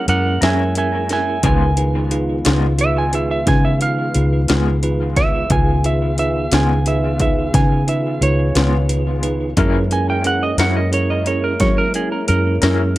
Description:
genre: slow blues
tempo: 59 BPM (dotted quarters)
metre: 12/8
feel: straight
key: Db mixolydian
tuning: A4 = 440 Hz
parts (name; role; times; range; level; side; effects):
- clean lap steel guitar; second line; 0.0-13.0 s; Ab4 to Ab5; -21 LUFS; right 2 dB; none
- tonewheel organ; sustained chords; 0.0-13.0 s; Eb3 to Ab4; -26 LUFS; left 1 dB; overdrive, slow rotary speaker
- vintage muted fingered electric bass; bass; 0.0-13.0 s; Db2 to Gb3; -18 LUFS; equal; none
- bell-like tine electric piano; accompaniment; 0.1-12.9 s; Db4 to Cb5; -23 LUFS; right 3 dB; dub echo
- techno drum kit; drums; 0.1-13.0 s; hi-hat, kick drum, snare drum; -20 LUFS; left 1 dB; none
- electric guitar through a small old amp; accompaniment; 0.4-12.8 s; Db3 to Bb4; -27 LUFS; left 3 dB; tremolo, dub echo
room: little or no reverb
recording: echo-heavy mix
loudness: -15 LUFS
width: side -16 dB against mid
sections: 0.0-13.0 A section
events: electric slide guitar solo 0.0-13.0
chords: 0.0 Gb7; 1.4 Db7; 9.6 Gb7

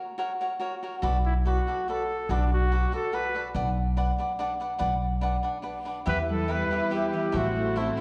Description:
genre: mexican folk, mariachi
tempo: 143 BPM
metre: 3/4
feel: straight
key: B minor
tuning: A4 = 440 Hz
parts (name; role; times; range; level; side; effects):
- cavaquinho; accompaniment; 0.2-8.0 s; D4 to F#5; -33 LUFS; equal; none
- upright bass; bass; 1.0-7.9 s; A1 to E2; -30 LUFS; equal; none
- warm trumpet; melody; 1.3-3.5, 6.1-8.0 s; D4 to B4; -32 LUFS; equal; none
- muted studio violin section; sustained chords; 6.1-8.0 s; G3 to C5; -41 LUFS; equal; none
- concert harp; arpeggios; 6.1-8.0 s; E3 to E5; -31 LUFS; equal; none
room: wet recital hall reverb, RT60 1.6 s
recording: heard from further back in the room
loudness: -27 LUFS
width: mono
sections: 0.0-6.1 A section; 6.1-8.0 B section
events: none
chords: 0.0 F#; 1.0 Bm7; 3.6 Bm; 6.1 Em; 7.3 Am

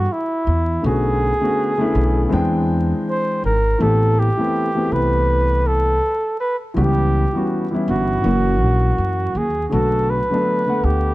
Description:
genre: hip hop, jazz-hop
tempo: 81 BPM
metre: 4/4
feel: swing 60% on 16ths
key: unclear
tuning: A4 = 440 Hz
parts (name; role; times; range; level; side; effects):
- breathy flugelhorn; melody; 0.0-11.1 s; E4 to B#4; -21 LUFS; right 1 dB; analog delay
- dark grand piano; accompaniment; 0.0-11.1 s; D3 to G5; -21 LUFS; left 2 dB; none
- upright bass; bass; 0.0-11.1 s; F#1 to F#2; -19 LUFS; equal; none
room: moderate studio ambience, RT60 0.5 s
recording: dark, warm production, vinyl crackle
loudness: -16 LUFS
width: side -18 dB against mid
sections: 0.0-11.1 A section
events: none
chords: 0.0 N.C.; 0.8 Bm9; 2.3 E7alt; 3.8 Am9; 6.8 C#m7b5; 8.2 F#7; 9.7 Bm7

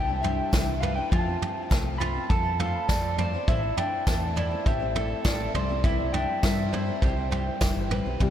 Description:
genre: indie folk with a building arrangement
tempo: 102 BPM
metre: 4/4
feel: straight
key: C major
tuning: A4 = 440 Hz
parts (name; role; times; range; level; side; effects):
- electric guitar through a small old amp; melody; 0.0-7.6 s; C5 to B5; -30 LUFS; left 1 dB; harmonic tremolo, analog delay
- picked steel-string acoustic guitar; accompaniment; 0.0-8.3 s; A2 to C5; -33 LUFS; left 5 dB; wide subtle chorus
- mandolin; arpeggios; 0.0-8.2 s; D4 to C5; -34 LUFS; right 4 dB; analog delay
- deep dub fingered electric bass; bass; 0.0-8.3 s; E1 to G2; -30 LUFS; equal; none
- vintage brush drum kit; drums; 0.2-8.3 s; kick drum, snare drum, toms; -27 LUFS; equal; none
- tambourine; percussion; 0.5-7.8 s; none; -43 LUFS; right 5 dB; none
- fingerpicked steel-string acoustic guitar; accompaniment; 8.2-8.3 s; C3 to G4; -27 LUFS; left 4 dB; none
room: moderate huge ambient reverb, RT60 8.3 s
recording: dreamy mix soaked in reverb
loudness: -24 LUFS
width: side -10 dB against mid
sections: 0.0-8.2 A section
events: none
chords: 0.0 Cadd9; 1.1 F; 3.5 Am; 5.6 C

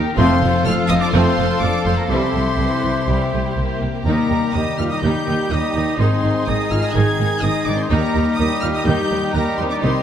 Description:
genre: cinematic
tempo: 125 BPM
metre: 4/4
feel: straight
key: unclear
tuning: A4 = 439 Hz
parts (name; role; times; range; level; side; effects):
- clear clarinet; second line; 0.0-10.0 s; G4 to Bb4; -29 LUFS; left 1 dB; none
- concert flute; second line; 0.0-10.0 s; Eb5 to G5; -28 LUFS; left 3 dB; none
- warm symphonic violin section; second line; 0.0-10.0 s; Eb4 to Bb4; -27 LUFS; left 2 dB; none
- rich symphonic viola section; accompaniment; 0.0-10.0 s; Eb3 to Eb4; -26 LUFS; right 2 dB; none
- concert harp; arpeggios; 0.0-10.0 s; Ab2 to Eb5; -25 LUFS; left 7 dB; none
- warm symphonic cello section; bass; 0.0-9.9 s; C2 to C3; -23 LUFS; right 2 dB; none
- warm symphonic violin section; melody; 0.2-10.0 s; Bb5 to Ab6; -27 LUFS; left 2 dB; none
- warm oboe; second line; 0.2-10.0 s; Bb4 to Ab5; -28 LUFS; right 1 dB; none
- clear trombone section; sustained chords; 0.2-10.0 s; Eb3 to A3; -30 LUFS; right 4 dB; none
- mellow French horn section; sustained chords; 0.2-10.0 s; Bb3 to Ab4; -25 LUFS; left 2 dB; none
- rich chamber double bass section; bass; 0.2-9.9 s; F1 to Eb2; -24 LUFS; right 3 dB; none
- timpani; percussion; 0.2-0.9 s; F2; -24 LUFS; equal; none
room: moderate scoring stage reverb, RT60 1.9 s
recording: none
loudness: -16 LUFS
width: side -9 dB against mid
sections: 0.0-10.0 A section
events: none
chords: 0.2 F; 2.1 C; 4.1 Eb; 6.0 Ab; 7.9 Eb

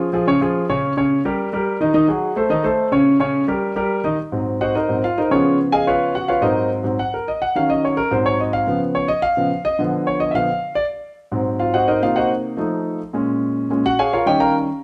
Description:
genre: jazz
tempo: 214 BPM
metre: 4/4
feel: straight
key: Ab mixolydian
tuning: A4 = 440 Hz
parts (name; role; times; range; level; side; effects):
- warm concert grand piano; solo; 0.0-14.7 s; Ab2 to Bb5; -19 LUFS; equal; none
room: moderate large studio reverb, RT60 1.1 s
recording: band playing live in one room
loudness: -19 LUFS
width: mono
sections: 0.0-4.2 A section; 4.2-14.8 B section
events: grand piano solo 4.2-14.8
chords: 0.0 Db; 0.8 Eb7; 1.9 Ab7; 2.5 Adim; 3.1 Eb7; 4.2 Ab9; 5.3 Db9; 6.4 Ab9; 7.5 Ebm7; 8.1 Ab7; 8.7 Db7; 9.8 Dm6; 10.9 Ab9; 12.0 Cm7b5; 12.6 F7; 13.1 Bbm7; 14.3 Eb9

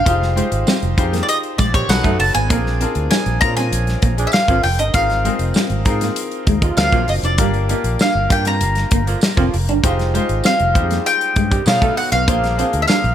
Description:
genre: polished 1980s jazz-funk pop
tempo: 98 BPM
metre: 4/4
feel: straight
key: F dorian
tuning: A4 = 440 Hz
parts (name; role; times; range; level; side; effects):
- mandolin; melody; 0.0-13.1 s; Db5 to Bb5; -20 LUFS; equal; tape echo
- bright grand piano; accompaniment; 0.0-13.1 s; F#3 to C#5; -24 LUFS; left 2 dB; wide subtle chorus
- semi-hollow electric guitar; riff; 0.1-13.0 s; G3 to F4; -24 LUFS; right 2 dB; lush chorus
- fingered electric bass with an envelope filter; bass; 0.1-13.1 s; F1 to B2; -20 LUFS; equal; none
- modern studio drum kit; drums; 0.1-13.1 s; hi-hat, kick drum, snare drum; -19 LUFS; equal; none
- tambourine; percussion; 0.7-13.0 s; none; -30 LUFS; right 7 dB; none
- mellow horn section; second line; 1.7-12.0 s; C3 to A4; -27 LUFS; right 4 dB; none
room: light reverb, studio ambience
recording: none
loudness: -14 LUFS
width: side -10 dB against mid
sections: 0.0-13.1 A section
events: none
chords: 0.1 Fm9; 1.9 B9; 2.5 Bb7; 4.9 Ab6; 6.8 D7alt; 7.4 Gm7; 9.8 Fm9; 11.7 B9; 12.3 Bb7

